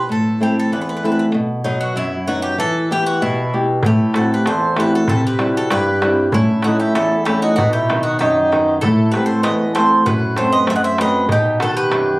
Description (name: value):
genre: greek folk, Greek bouzouki band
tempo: 96 BPM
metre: 2/4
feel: straight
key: unclear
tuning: A4 = 440 Hz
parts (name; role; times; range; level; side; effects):
- Greek bouzouki; melody; 0.0-12.2 s; D#4 to F#5; -21 LUFS; right 1 dB; none
- flamenco guitar; accompaniment; 0.0-12.2 s; E2 to D#5; -17 LUFS; equal; none
- darbuka; percussion; 3.8-12.1 s; none; -21 LUFS; equal; none
- mellow accordion; second line; 3.9-12.2 s; C#4 to D#5; -19 LUFS; right 1 dB; none
room: moderate studio ambience, RT60 0.5 s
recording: recorded on a phone in the room, club reverb, compression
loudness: -14 LUFS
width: side -21 dB against mid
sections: 0.0-3.8 A section; 3.8-12.2 B section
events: none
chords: 0.1 Am; 1.3 B; 2.6 Em; 3.8 Am; 5.1 C; 6.3 A; 7.6 B; 8.8 Amadd9; 10.1 F#dim; 11.3 B